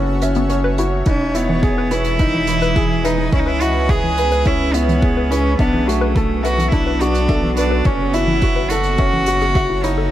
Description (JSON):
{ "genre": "piano and strings electronica", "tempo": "106 BPM", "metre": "4/4", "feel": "straight", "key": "unclear", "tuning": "A4 = 441 Hz", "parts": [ { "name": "granular cloud pad", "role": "sustained chords", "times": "0.0-10.1 s", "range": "E3 to A5", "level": "-25 LUFS", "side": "right 2 dB", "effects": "built-in reverb, sidechain pumping" }, { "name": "felt-muted upright piano", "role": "riff", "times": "0.0-10.1 s", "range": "C#4 to C#5", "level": "-22 LUFS", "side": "left 1 dB", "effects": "tape echo" }, { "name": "round analog bass", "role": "bass", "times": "0.0-10.1 s", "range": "E1 to C#2", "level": "-21 LUFS", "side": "equal", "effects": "sidechain pumping" }, { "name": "warbly dusty pluck", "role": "arpeggios", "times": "0.2-10.0 s", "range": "E3 to E5", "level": "-26 LUFS", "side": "left 2 dB", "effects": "chorus, sidechain pumping, tape echo" }, { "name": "hi-hat", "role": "drums", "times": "0.2-9.9 s", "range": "none", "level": "-34 LUFS", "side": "right 6 dB", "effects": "none" }, { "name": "rich cello", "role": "melody", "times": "1.1-10.1 s", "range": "A3 to G#4", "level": "-20 LUFS", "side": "equal", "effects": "none" }, { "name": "electronic kick drum", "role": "drums", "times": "1.1-9.7 s", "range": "none", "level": "-18 LUFS", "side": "equal", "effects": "none" } ], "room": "light reverb, small room ambience", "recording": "none", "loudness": "-14 LUFS", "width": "side -12 dB against mid", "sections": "0.0-10.1 A section", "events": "break 0.0-1.1", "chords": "0.0 F#m7; 1.1 Emaj7; 3.3 C#m7; 5.6 Bm7; 7.9 F#m7", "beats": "0.49 | 1.06 1.63 2.19 2.76 | 3.33 3.89 4.46 5.02 | 5.59 6.16 6.72 7.29 | 7.85 8.42 8.99 9.55" }